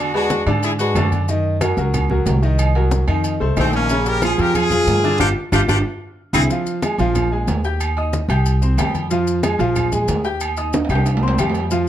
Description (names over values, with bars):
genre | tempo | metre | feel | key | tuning
latin, salsa | 184 BPM | 4/4 | straight | F minor | A4 = 440 Hz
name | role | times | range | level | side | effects
brilliant horn section | melody | 0.0-1.1, 3.6-6.4 s | A3 to Bb4 | -20 LUFS | left 1 dB | none
bright baby grand piano | accompaniment | 0.0-11.9 s | Db3 to G6 | -21 LUFS | equal | none
upright bass | bass | 0.0-11.9 s | G1 to G#2 | -20 LUFS | equal | none
agogo bells and timbales | percussion | 0.1-11.7 s | none | -26 LUFS | right 6 dB | none
congas | percussion | 0.1-11.9 s | none | -26 LUFS | left 2 dB | none
maracas | percussion | 0.3-11.9 s | none | -33 LUFS | left 7 dB | none
claves | percussion | 0.5-11.6 s | none | -31 LUFS | right 4 dB | none
room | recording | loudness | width
moderate large studio reverb, RT60 0.9 s | dark, warm production | -16 LUFS | side -11 dB against mid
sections
0.0-6.5 A section; 6.5-11.9 B section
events
band accent 5.2-6.5; drum fill 10.7-11.7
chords
0.0 E9; 1.3 Gb6; 2.6 Cm7b5; 3.2 F7; 3.9 Bbm7; 5.2 G5; 5.9 Caug; 6.5 Fm; 7.2 Bb5; 7.8 Eb; 8.5 C5; 9.1 Fm; 9.8 Bb5; 10.4 Eb; 11.1 C5